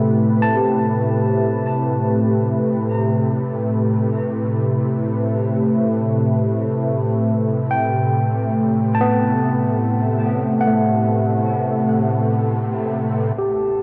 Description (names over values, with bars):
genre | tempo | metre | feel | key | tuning
ambient | free time | none | none | A dorian | A4 = 440 Hz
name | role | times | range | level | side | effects
warm analog pad | sustained chords | 0.0-13.8 s | A2 to B4 | -20 LUFS | equal | chorus
barky tine electric piano | arpeggios | 0.0-13.8 s | A3 to A5 | -24 LUFS | equal | diffuse ambient delay
bright studio double bass section | bass | 13.4-13.8 s | A1 | -45 LUFS | equal | none
glass harmonica | texture | 13.4-13.8 s | A4 to A5 | -38 LUFS | equal | none
room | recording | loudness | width
wet cathedral reverb, RT60 6.0 s | worn, warbling old tape, cassette tape, warbly pitch drift | -19 LUFS | mono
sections
0.0-13.4 A section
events
filter sweep on analog synth pad 0.0-13.4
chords
0.0 Am9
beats
free time